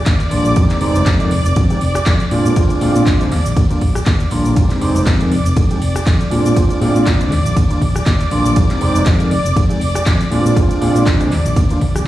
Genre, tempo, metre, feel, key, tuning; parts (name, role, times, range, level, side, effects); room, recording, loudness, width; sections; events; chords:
filtered disco house; 120 BPM; 4/4; swing 56% on 16ths; F dorian; A4 = 440 Hz
dark chamber string section; sustained chords; 0.0-12.1 s; D5 to D6; -23 LUFS; right 1 dB; vintage 12-bit sampler grit, sidechain pumping
fingered electric bass; bass; 0.1-12.1 s; F1 to Bb2; -17 LUFS; equal; sidechain pumping
electronic kick drum; drums; 0.1-11.9 s; -15 LUFS; equal
house drum kit; drums; 0.1-12.0 s; handclaps, hi-hat, ride cymbal, rim click, shaker; -25 LUFS; equal
overdriven tine electric piano; accompaniment; 0.3-11.8 s; G3 to Bb4; -18 LUFS; right 1 dB; phaser, sidechain pumping
little or no reverb; played on a big sound system in a bare room, large studio reverb, studio reverb; -12 LUFS; side -14 dB against mid
0.0-12.1 A section
0.0 Ebmaj7; 0.6 Fm7; 2.3 Bb7; 3.3 Ebmaj7; 4.6 Fm7; 6.3 Bb7; 7.3 Ebmaj7; 8.6 Fm7; 10.3 Bb7; 11.3 Ebmaj7(no3)